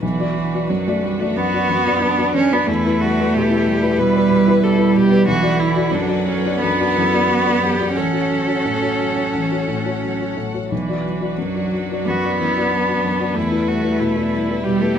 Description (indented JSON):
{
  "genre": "neoclassical piano and strings",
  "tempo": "85-95 BPM",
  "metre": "4/4",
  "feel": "rubato",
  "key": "B minor",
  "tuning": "A4 = 440 Hz",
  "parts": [
    { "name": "rich cello", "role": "second line", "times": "0.0-15.0 s", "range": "E3 to C#4", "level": "-18 LUFS", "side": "right 3 dB", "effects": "none" },
    { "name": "felt-muted upright piano", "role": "accompaniment", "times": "0.0-15.0 s", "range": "A1 to D5", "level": "-21 LUFS", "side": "left 4 dB", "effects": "none" },
    { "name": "rich studio string section", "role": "sustained chords", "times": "0.0-15.0 s", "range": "D3 to F#5", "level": "-29 LUFS", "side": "left 1 dB", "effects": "none" },
    { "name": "rich viola", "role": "accompaniment", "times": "1.4-15.0 s", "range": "C#4 to B4", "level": "-24 LUFS", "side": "right 1 dB", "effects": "none" }
  ],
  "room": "light reverb",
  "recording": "minimal, uncompressed stereo recording",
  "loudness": "-16 LUFS",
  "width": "side -8 dB against mid",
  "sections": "0.0-15.0 A section",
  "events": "none",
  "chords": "0.0 Bm; 2.7 Em; 5.3 Bm; 8.0 F#m/A; 10.7 Bm; 13.4 Em",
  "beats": "| 0.02 0.70 1.36 2.02 | 2.68 3.33 3.98 4.63 | 5.27 5.92 6.61 7.28 | 7.96 8.65 9.34 10.03 | 10.71 11.39 12.07 12.72 | 13.36 13.99 14.64"
}